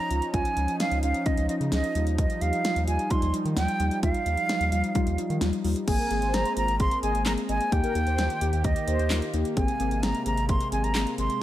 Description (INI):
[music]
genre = synth-pop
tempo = 130 BPM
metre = 4/4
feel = straight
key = Ab major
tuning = A4 = 440 Hz
[part]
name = mellow silver concert flute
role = melody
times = 0.0-11.4 s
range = Eb5 to C6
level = -29 LUFS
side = right 2 dB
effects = slapback echo
[part]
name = warm analog pad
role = sustained chords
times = 0.0-11.4 s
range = C3 to G4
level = -33 LUFS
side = right 1 dB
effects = chorus
[part]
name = muted felt-like synth keys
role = accompaniment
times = 0.1-11.3 s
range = G3 to Ab4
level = -31 LUFS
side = left 3 dB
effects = chorus
[part]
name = round analog bass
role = bass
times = 0.1-11.3 s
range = Ab1 to Eb3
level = -28 LUFS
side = equal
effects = none
[part]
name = pop drum kit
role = drums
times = 0.1-11.4 s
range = crash cymbal, handclaps, hi-hat, kick drum, snare drum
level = -29 LUFS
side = equal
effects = overdrive
[part]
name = mellow synth brass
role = second line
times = 6.0-9.2 s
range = Bb4 to Eb5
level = -36 LUFS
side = left 1 dB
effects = chorus, phaser, slapback echo
[sound]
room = light reverb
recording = none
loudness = -23 LUFS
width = side -13 dB against mid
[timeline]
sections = 0.0-5.9 A section; 5.9-11.4 B section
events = none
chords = 0.0 Dbadd9; 2.0 Ebadd9; 5.9 Abadd9; 7.7 Eb; 9.6 Abadd9